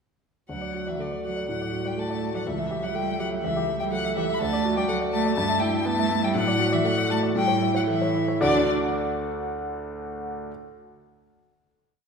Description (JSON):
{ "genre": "quick classical-period movement for piano trio", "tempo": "110-125 BPM", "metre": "4/4", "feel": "rubato", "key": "D major", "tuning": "A4 = 440 Hz", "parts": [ { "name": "warm violin", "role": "melody", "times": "0.5-8.7 s", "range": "D5 to B5", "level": "-28 LUFS", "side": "left 5 dB", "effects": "none" }, { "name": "warm cello", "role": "second line", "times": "0.5-8.7 s", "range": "D3 to D4", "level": "-29 LUFS", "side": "right 6 dB", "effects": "none" }, { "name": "clear grand piano", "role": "accompaniment", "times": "0.5-10.5 s", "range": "C#2 to F#5", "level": "-26 LUFS", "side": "equal", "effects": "none" } ], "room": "wet scoring stage reverb, RT60 1.8 s", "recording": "minimal, uncompressed stereo recording", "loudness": "-23 LUFS", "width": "side -5 dB against mid", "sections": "0.5-8.4 A section; 8.4-10.5 final chord", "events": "none", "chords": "0.5 D; 2.5 A7/C#; 4.4 D; 5.4 Em/G; 6.4 D/A; 7.4 A; 8.4 D" }